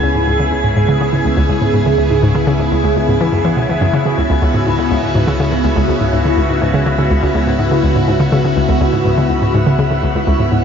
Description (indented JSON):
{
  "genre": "ambient, sequencer-driven space music",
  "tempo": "123 BPM",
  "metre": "4/4",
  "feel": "straight",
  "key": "C# minor",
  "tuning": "A4 = 442 Hz",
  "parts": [
    { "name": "phased analog pad", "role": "sustained chords", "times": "0.0-10.6 s", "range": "C#3 to G#4", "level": "-15 LUFS", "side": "equal", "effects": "phaser, chorus" },
    { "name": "hollow square pluck", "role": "riff", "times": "0.0-10.6 s", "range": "C#2 to E3", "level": "-15 LUFS", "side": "equal", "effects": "chorus, ping-pong delay" },
    { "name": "analog drone", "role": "bass", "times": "0.0-10.6 s", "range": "C#2", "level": "-22 LUFS", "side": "equal", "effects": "chorus" }
  ],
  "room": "wet shimmer reverb, RT60 7.8 s",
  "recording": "nothing above 7.6 kHz",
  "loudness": "-12 LUFS",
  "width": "side -7 dB against mid",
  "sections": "0.0-10.6 A section",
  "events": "none",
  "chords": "0.0 C#m7"
}